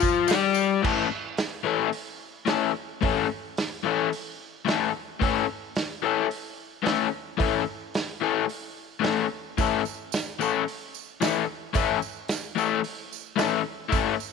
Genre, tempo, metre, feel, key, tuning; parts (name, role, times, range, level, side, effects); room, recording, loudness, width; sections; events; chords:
garage rock duo or trio; 110 BPM; 4/4; straight; A mixolydian; A4 = 438 Hz
crunchy overdriven guitar; riff; 0.0-14.1 s; A2 to A4; -24 LUFS; left 10 dB
vintage drum kit; drums; 0.0-14.1 s; crash cymbal, hi-hat, kick drum, snare drum; -30 LUFS; right 3 dB
tambourine; percussion; 0.0-0.7, 9.6-14.3 s; -38 LUFS; right 22 dB
light reverb, small room ambience; 1960s-style stereo with parts hard left and right; -24 LUFS; side -5 dB against mid
0.8-14.3 A section
0.0 Dmadd11 (rootless); 0.8 A